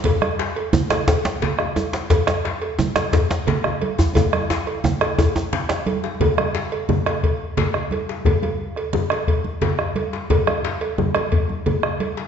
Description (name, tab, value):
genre	west african traditional, West African drum ensemble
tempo	117 BPM (dotted quarters)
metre	12/8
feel	straight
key	none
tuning	none
part	bombo	percussion	0.0-12.0 s	none	-23 LUFS	left 1 dB	none
part	congas	percussion	0.0-12.2 s	none	-26 LUFS	right 5 dB	none
part	cowbell	percussion	0.1-12.2 s	none	-26 LUFS	right 5 dB	none
part	djembe	percussion	0.1-12.3 s	none	-25 LUFS	left 6 dB	none
part	djembe	percussion	0.7-5.9 s	none	-24 LUFS	right 1 dB	none
room	wet recital hall reverb, RT60 1.5 s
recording	recorded in a church or concert hall, nothing above 7.8 kHz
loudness	-18 LUFS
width	side -7 dB against mid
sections	0.0-6.2 A section; 6.2-12.3 B section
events	drum fill 4.2-6.2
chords	none